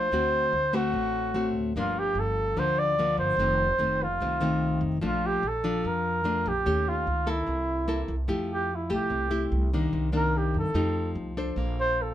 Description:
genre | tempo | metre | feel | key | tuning
bossa nova | 147 BPM | 4/4 | straight | D minor, F major from 8.3 s | A4 = 442 Hz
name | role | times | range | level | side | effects
warm flugelhorn | melody | 0.0-12.1 s | E4 to D5 | -27 LUFS | right 1 dB | none
nylon-string guitar | accompaniment | 0.0-12.1 s | F2 to C5 | -29 LUFS | left 2 dB | none
upright bass | bass | 0.0-12.1 s | F1 to G2 | -32 LUFS | right 1 dB | none
room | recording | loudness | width
moderate studio reverb, RT60 0.6 s | band playing live in one room | -24 LUFS | side -11 dB against mid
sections
0.0-8.3 A section; 8.3-12.1 B section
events
flugelhorn solo 8.3-12.1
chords
0.1 D7; 1.8 Gm7; 3.4 F7; 5.0 Bbmaj7; 6.7 Eb7#11; 7.5 C6; 8.3 Fmaj9; 9.9 Cm9; 10.7 F9; 11.6 Bbmaj9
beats
| 0.12 0.53 0.94 1.35 | 1.76 2.17 2.58 2.98 | 3.39 3.80 4.21 4.62 | 5.03 5.43 5.84 6.25 | 6.66 7.07 7.48 7.89 | 8.29 8.70 9.11 9.52 | 9.93 10.34 10.75 11.16 | 11.57 11.97

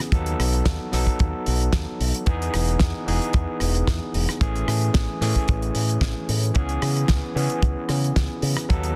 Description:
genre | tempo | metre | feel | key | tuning
nu-disco, nu disco | 112 BPM | 4/4 | swing 54% on 16ths | unclear | A4 = 440 Hz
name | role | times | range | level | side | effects
overdriven tine electric piano | accompaniment | 0.0-9.0 s | E3 to A4 | -29 LUFS | equal | sidechain pumping, dub echo
damped 70s drum kit | drums | 0.0-8.9 s | hi-hat, rim click, snare drum | -31 LUFS | equal | none
fingered electric bass with an envelope filter | bass | 0.1-8.9 s | E1 to C#3 | -26 LUFS | equal | none
kick drum | drums | 0.1-8.8 s | none | -23 LUFS | equal | soft clipping on snare
room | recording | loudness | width
small room ambience | dense, heavily limited modern master | -23 LUFS | mono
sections
0.0-9.0 A section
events
none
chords
0.1 B7; 2.3 Emaj7; 4.4 Amaj7; 6.6 C#m7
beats
| 0.12 0.66 1.20 1.73 | 2.27 2.80 3.34 3.88 | 4.41 4.95 5.48 6.02 | 6.55 7.09 7.62 8.16 | 8.70

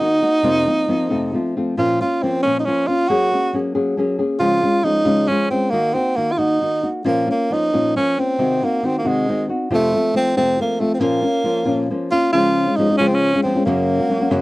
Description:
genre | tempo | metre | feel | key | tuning
mexican folk, mariachi | 91 BPM (dotted quarters) | 6/8 | rubato | Bb minor | A4 = 438 Hz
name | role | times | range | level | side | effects
warm tenor saxophone | melody | 0.0-14.4 s | Ab3 to Gb4 | -18 LUFS | right 1 dB | none
nylon-string guitar | accompaniment | 0.0-14.4 s | F2 to Ab4 | -19 LUFS | left 2 dB | none
room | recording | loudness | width
light reverb | dry, close 1970s-style studio recording | -16 LUFS | side -19 dB against mid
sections
0.0-12.3 A section; 12.3-14.4 B section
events
none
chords
0.4 Fsus4; 1.1 F; 1.8 Bbm; 3.1 Gbadd9; 4.4 Db; 5.7 Ebm; 7.0 Bbm; 8.4 Cdim; 9.7 F; 11.0 Bbm; 12.3 Db; 13.7 Gb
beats
| 0.43 1.10 | 1.77 2.43 | 3.10 3.75 | 4.40 5.06 | 5.71 6.38 | 7.05 7.72 | 8.38 9.04 | 9.70 10.35 | 11.00 11.66 | 12.33 12.99 | 13.65 14.31

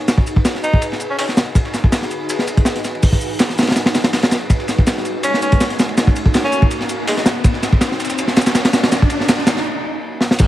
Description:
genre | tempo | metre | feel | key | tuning
drum and bass, jungle | 163 BPM | 4/4 | swing 54% on 16ths | unclear | A4 = 440 Hz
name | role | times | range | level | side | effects
crunchy breakbeat drum kit | drums | 0.0-10.5 s | crash cymbal, hi-hat, kick drum, ride cymbal, snare drum | -15 LUFS | equal | none
riser | sound effects | 1.0-9.7 s | none | -26 LUFS | equal | none
dusty soul sampler-style drum kit | drums | 0.1-10.5 s | hi-hat, shaker, snare drum | -27 LUFS | right 1 dB | high-pass filter on snare, high-pass filter on perc, high-pass filter on hats
bright tenor saxophone | melody | 0.6-1.2, 5.2-7.2 s | G#3 to D#4 | -23 LUFS | equal | dub echo
detuned saw bass | bass | 10.4-10.5 s | G#1 | -13 LUFS | equal | none
room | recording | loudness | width
light reverb | vinyl crackle | -14 LUFS | side -14 dB against mid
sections
0.0-10.4 A section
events
build-up 0.0-10.4; riser 1.0-9.7; break 9.7-10.4; drum fill 10.2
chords
0.0 G#m7; 4.5 D#m7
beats
| 0.08 0.45 0.82 1.19 | 1.56 1.92 2.29 2.66 | 3.03 3.40 3.77 4.13 | 4.50 4.87 5.24 5.61 | 5.97 6.34 6.71 7.08 | 7.45 7.81 8.18 8.55 | 8.92 9.29 9.65 10.02 | 10.39

